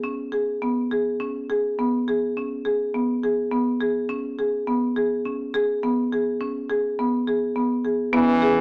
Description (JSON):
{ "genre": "contemporary instrumental, chamber music in an uneven meter", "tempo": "104 BPM", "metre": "7/4", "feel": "straight", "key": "C# minor", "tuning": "A4 = 441 Hz", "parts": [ { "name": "marimba with medium hard mallets", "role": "arpeggios", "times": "0.0-8.6 s", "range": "B3 to G#4", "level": "-24 LUFS", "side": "equal", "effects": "none" }, { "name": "stopped French horn", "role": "second line", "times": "8.1-8.6 s", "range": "E3", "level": "-23 LUFS", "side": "equal", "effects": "none" }, { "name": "mellow woodwind section", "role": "sustained chords", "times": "8.1-8.6 s", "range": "B2 to C#4", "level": "-31 LUFS", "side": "equal", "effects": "none" } ], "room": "moderate studio reverb, RT60 0.8 s", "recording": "none", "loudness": "-24 LUFS", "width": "mono", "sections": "0.0-8.1 A section", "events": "none", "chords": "0.0 C#5" }